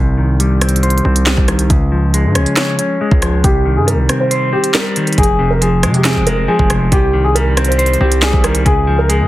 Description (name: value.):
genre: hip hop, drill.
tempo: 138 BPM.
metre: 4/4.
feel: half-time.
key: C phrygian.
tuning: A4 = 440 Hz.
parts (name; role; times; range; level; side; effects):
clean electric guitar; accompaniment; 0.0-9.3 s; F2 to Db5; -16 LUFS; left 1 dB; low-pass filter.
distorted 808-style bass; bass; 0.0-9.3 s; F1 to C3; -15 LUFS; equal; distortion.
drill drum kit; drums; 0.4-9.2 s; handclaps, hi-hat, kick drum, rim click, snare drum; -16 LUFS; equal; none.
dark concert grand piano; melody; 3.4-9.3 s; G4 to C5; -17 LUFS; equal; low-pass filter.
room: light reverb.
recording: heavily compressed radio sound, multiband compression.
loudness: -11 LUFS.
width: side -16 dB against mid.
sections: 0.0-9.3 A section.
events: break 0.0-3.4; filter sweep 0.0-5.2; kick muted 4.3-5.2.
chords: 0.0 Cm; 1.7 Db; 3.4 Cm; 5.2 Fm; 6.9 Cm; 8.7 Db.